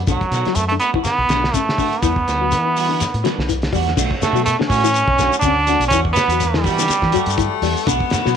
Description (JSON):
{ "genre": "afrobeat", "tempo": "123 BPM", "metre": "4/4", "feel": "swing 56% on 16ths", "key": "B minor", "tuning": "A4 = 438 Hz", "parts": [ { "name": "deep dub fingered electric bass", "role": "bass", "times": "0.0-8.4 s", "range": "B1 to E3", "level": "-22 LUFS", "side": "equal", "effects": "tube saturation" }, { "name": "trombone with metal mute", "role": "melody", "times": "0.1-7.6 s", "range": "F#3 to D4", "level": "-18 LUFS", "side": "right 2 dB", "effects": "none" }, { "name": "electric guitar through a small old amp", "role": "arpeggios", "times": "0.1-8.4 s", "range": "C#3 to G3", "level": "-24 LUFS", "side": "left 16 dB", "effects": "tremolo" }, { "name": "semi-hollow electric guitar", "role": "stabs", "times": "0.1-8.4 s", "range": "F#3 to F#4", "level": "-27 LUFS", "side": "right 13 dB", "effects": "lush chorus" }, { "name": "cloth-damped thuddy drum kit", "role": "drums", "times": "0.1-8.3 s", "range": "crash cymbal, hi-hat, kick drum, snare drum", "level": "-23 LUFS", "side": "equal", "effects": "none" }, { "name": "shekere", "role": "percussion", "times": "0.1-8.4 s", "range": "none", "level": "-26 LUFS", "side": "left 6 dB", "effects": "none" }, { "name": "bright alto saxophone", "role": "second line", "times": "4.2-7.6 s", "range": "G4 to D5", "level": "-26 LUFS", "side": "right 8 dB", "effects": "none" }, { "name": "breathy baritone saxophone", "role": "second line", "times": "7.1-8.4 s", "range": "A3 to B3", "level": "-22 LUFS", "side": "left 15 dB", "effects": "slapback echo" } ], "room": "light reverb", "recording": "1960s-style stereo with parts hard left and right", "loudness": "-15 LUFS", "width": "side -8 dB against mid", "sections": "0.0-4.0 A section; 4.0-8.4 B section", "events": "none", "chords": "0.1 Bm7; 2.0 Em9; 4.0 Bm7; 5.9 Em9", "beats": "| 0.07 0.56 1.05 1.54 | 2.02 2.51 3.00 3.49 | 3.98 4.46 4.95 5.44 | 5.92 6.41 6.90 7.38 | 7.87 8.36" }